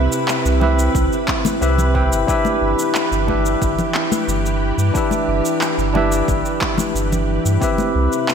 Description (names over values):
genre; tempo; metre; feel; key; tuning
sunset chillout; 90 BPM; 4/4; straight; G major; A4 = 439 Hz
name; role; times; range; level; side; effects
mellow tine electric piano; accompaniment; 0.0-8.3 s; C4 to G5; -19 LUFS; equal; auto-pan, digital delay
soft string machine; sustained chords; 0.0-8.3 s; C3 to B4; -24 LUFS; equal; ensemble chorus
warm sub bass; bass; 0.0-8.1 s; G1 to G2; -19 LUFS; equal; none
electronic shaker and handclaps; drums; 0.1-8.3 s; none; -25 LUFS; equal; gated reverb
congas; percussion; 0.6-7.9 s; none; -26 LUFS; left 4 dB; none
electronic kick drum; drums; 0.9-7.8 s; none; -24 LUFS; equal; overdrive
room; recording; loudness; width
moderate lush hall reverb, RT60 2.6 s; bright 1980s-style digital production; -15 LUFS; side -7 dB against mid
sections
0.0-8.3 A section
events
none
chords
0.0 Cmaj7; 2.3 G6; 7.6 Cmaj7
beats
0.28 0.95 1.62 | 2.28 2.95 3.62 4.28 | 4.95 5.62 6.28 6.95 | 7.62 8.28